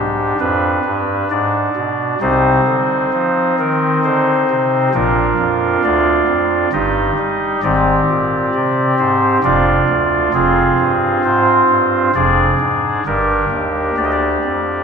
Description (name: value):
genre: classical, chorale-style piece for pipe organ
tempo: 66 BPM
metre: 3/4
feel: rubato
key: C minor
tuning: A4 = 440 Hz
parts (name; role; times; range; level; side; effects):
- chamber organ, soft reed; solo; 0.0-14.8 s; F1 to Eb5; -13 LUFS; equal; none
room: wet scoring stage reverb, RT60 1.8 s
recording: none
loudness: -13 LUFS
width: side -6 dB against mid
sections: 0.0-14.8 A section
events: none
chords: 0.0 G; 2.2 Cm; 5.0 Bb; 6.7 Eb/G; 7.6 Abmaj7; 9.4 Dm/F; 10.3 Fm; 12.2 Ddim/F; 13.1 Gm